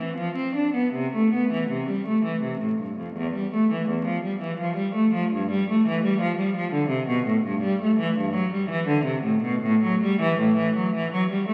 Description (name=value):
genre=classical, baroque-style suite movement for unaccompanied cello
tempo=83 BPM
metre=3/4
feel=uneven beats, rubato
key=E minor from 7.4 s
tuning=A4 = 441 Hz
part: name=rich cello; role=solo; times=0.0-11.5 s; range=E2 to D4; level=-24 LUFS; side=equal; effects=none
room=wet recital hall reverb, RT60 1.7 s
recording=very old 78 rpm record, vinyl crackle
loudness=-24 LUFS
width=mono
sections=0.0-11.5 A section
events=none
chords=none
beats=0.18 | 0.94 1.70 2.42 | 3.15 3.87 4.57 | 5.31 6.04 6.74 | 7.44 8.15 8.85 | 9.62 10.38 11.11